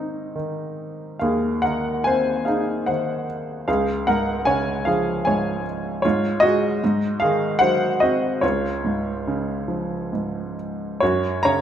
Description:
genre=classical, lyrical solo piano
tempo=65-78 BPM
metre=3/4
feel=rubato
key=Db major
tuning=A4 = 440 Hz
part: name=clear baby grand piano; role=solo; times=0.0-11.6 s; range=Db2 to A#5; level=-20 LUFS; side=equal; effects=none
room=moderate recital hall reverb, RT60 1.8 s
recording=minimal, uncompressed stereo recording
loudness=-20 LUFS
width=side -9 dB against mid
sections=0.0-11.0 A section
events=none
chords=0.0 Ab; 3.7 Db; 6.0 Db/Ab; 6.8 Ab7; 8.4 Db; 11.0 F#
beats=0.35 | 1.22 2.06 2.88 | 3.68 4.47 5.26 | 6.04 6.82 7.61 | 8.43 9.26 10.13 | 11.02

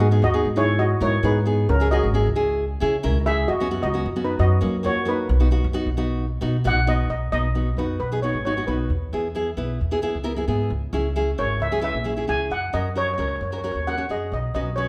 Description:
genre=calypso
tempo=133 BPM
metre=4/4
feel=straight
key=B major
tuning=A4 = 440 Hz
part: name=steel pan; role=melody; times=0.0-14.9 s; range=C#4 to G#5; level=-27 LUFS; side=equal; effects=none
part: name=nylon-string guitar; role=accompaniment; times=0.0-14.9 s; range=A#3 to C#5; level=-28 LUFS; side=equal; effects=none
part: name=upright bass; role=bass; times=0.0-14.9 s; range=G#1 to F#3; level=-26 LUFS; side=equal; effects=none
room=moderate recital hall reverb, RT60 1.4 s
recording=none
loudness=-23 LUFS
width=mono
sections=0.0-7.1 A section; 7.1-14.9 B section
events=none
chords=0.0 G#m7; 1.7 C#m; 3.5 F#sus4; 4.4 F#; 5.3 B; 8.9 E; 10.7 C#m; 12.5 F#; 14.3 Bsus2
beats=0.33 0.79 1.24 | 1.69 2.14 2.59 3.04 | 3.49 3.94 4.39 4.84 | 5.29 5.74 6.20 6.64 | 7.10 7.55 8.00 8.45 | 8.90 9.35 9.80 10.26 | 10.71 11.16 11.61 12.06 | 12.52 12.97 13.42 13.87 | 14.32 14.78

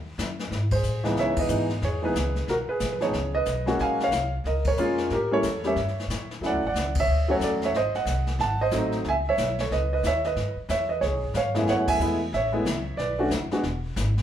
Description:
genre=jazz piano trio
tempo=183 BPM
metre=4/4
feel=swing 62% on 8ths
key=C# minor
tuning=A4 = 441 Hz
part: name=upright bass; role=bass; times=0.0-14.2 s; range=E1 to C#3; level=-29 LUFS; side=equal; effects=none
part: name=jazz brush drum kit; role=drums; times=0.2-14.2 s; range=brushed snare drum, hi-hat, kick drum, ride cymbal, snare drum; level=-33 LUFS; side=left 2 dB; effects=none
part: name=warm concert grand piano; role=melody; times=0.7-13.6 s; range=C#2 to A5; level=-24 LUFS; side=right 1 dB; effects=none
room=moderate large studio reverb, RT60 0.8 s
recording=band playing live in one room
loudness=-23 LUFS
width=side -10 dB against mid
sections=0.0-1.2 A section; 1.2-11.7 A section; 11.7-14.2 B section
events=band accent 0.7, 1.3, 4.6, 6.9, 11.8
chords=0.0 D#m; 0.5 G#; 1.2 C#m9; 2.5 G#madd9; 3.1 C#sus2; 3.8 F#maj7; 5.1 A7b9; 6.4 Dmaj9; 7.7 G#7b9; 9.1 C#m9; 11.0 C#7; 11.7 F#m11; 13.0 Bm; 13.6 E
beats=0.18 0.51 0.84 | 1.17 1.50 1.83 2.15 | 2.48 2.81 3.14 3.47 | 3.80 4.12 4.45 4.78 | 5.11 5.44 5.77 6.10 | 6.42 6.75 7.08 7.41 | 7.74 8.07 8.39 8.72 | 9.05 9.38 9.71 10.04 | 10.36 10.69 11.02 11.35 | 11.68 12.00 12.33 12.66 | 12.98 13.31 13.64 13.97

